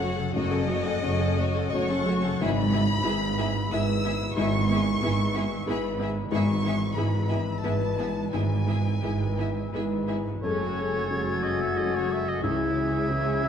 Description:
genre	cinematic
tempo	83-95 BPM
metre	3/4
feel	rubato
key	unclear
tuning	A4 = 435 Hz
part	warm chamber violin section	melody	0.0-13.5 s	E4 to E6	-34 LUFS	left 2 dB	none
part	clear symphonic violin section	second line	0.0-13.5 s	C#4 to F#5	-36 LUFS	left 4 dB	none
part	felt-muted upright piano	accompaniment	0.0-13.5 s	F#1 to C#5	-30 LUFS	left 2 dB	none
part	warm symphonic viola section	accompaniment	0.0-13.5 s	E3 to A4	-35 LUFS	right 1 dB	none
part	concert harp	arpeggios	0.0-13.5 s	F#2 to E6	-34 LUFS	left 8 dB	none
part	warm symphonic cello section	bass	0.0-13.5 s	F#2 to C#3	-30 LUFS	right 3 dB	none
part	warm symphonic double bass section	bass	0.0-13.5 s	F#1 to C#2	-32 LUFS	right 4 dB	none
part	bright clarinet	second line	10.4-13.5 s	G#4 to A4	-36 LUFS	left 2 dB	none
part	bright concert flute	second line	10.4-13.5 s	G#6	-35 LUFS	left 1 dB	none
part	clear oboe	second line	10.4-13.5 s	C#5 to E5	-31 LUFS	right 3 dB	none
part	dark French horn section	sustained chords	10.4-13.5 s	E4 to A4	-29 LUFS	left 5 dB	none
room	wet scoring stage reverb, RT60 1.7 s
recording	dark, warm production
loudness	-24 LUFS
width	side -8 dB against mid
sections	0.0-10.4 A section; 10.4-13.5 B section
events	none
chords	0.0 F#m; 2.4 E/G#; 10.4 F#madd9; 12.4 C#m

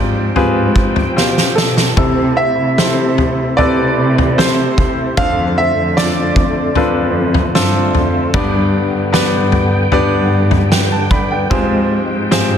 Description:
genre	pop ballad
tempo	76 BPM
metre	4/4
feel	straight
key	unclear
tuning	A4 = 440 Hz
part	clear baby grand piano	accompaniment	0.0-12.6 s	G2 to B5	-17 LUFS	left 2 dB	none
part	bright tonewheel organ	sustained chords	0.0-12.6 s	C3 to G5	-23 LUFS	right 1 dB	chorus vibrato, slow rotary speaker
part	dark studio cello section	bass	0.0-12.6 s	F2 to C3	-18 LUFS	right 1 dB	none
part	loose indie drum kit	drums	0.4-12.5 s	kick drum, snare drum, toms	-16 LUFS	equal	none
part	clear concert grand piano	melody	1.6-7.9 s	A4 to F5	-18 LUFS	right 2 dB	digital delay
room	light reverb, small room ambience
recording	dense, heavily limited modern master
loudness	-12 LUFS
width	side -8 dB against mid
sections	0.0-12.6 A section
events	drum fill 1.2-2.0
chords	0.0 Fmadd9/Ab; 2.0 C6; 5.2 F6; 8.3 G; 11.5 Fmadd9/Ab

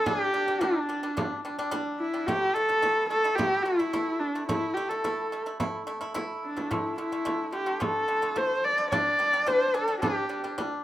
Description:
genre	mongolian traditional, Mongolian folk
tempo	108 BPM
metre	4/4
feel	straight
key	G zhi mode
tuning	A4 = 439 Hz
part	warm horsehead fiddle	melody	0.0-10.5 s	D4 to D5	-26 LUFS	equal	none
part	pipa	arpeggios	0.0-10.8 s	D3 to E4	-33 LUFS	equal	none
part	frame drum	percussion	0.1-10.7 s	none	-34 LUFS	right 1 dB	none
room	light reverb, small room ambience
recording	rough home demo mix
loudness	-25 LUFS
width	side -14 dB against mid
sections	0.0-10.8 A section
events	none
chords	0.1 G5; 2.3 A5; 6.7 D5; 8.9 G5

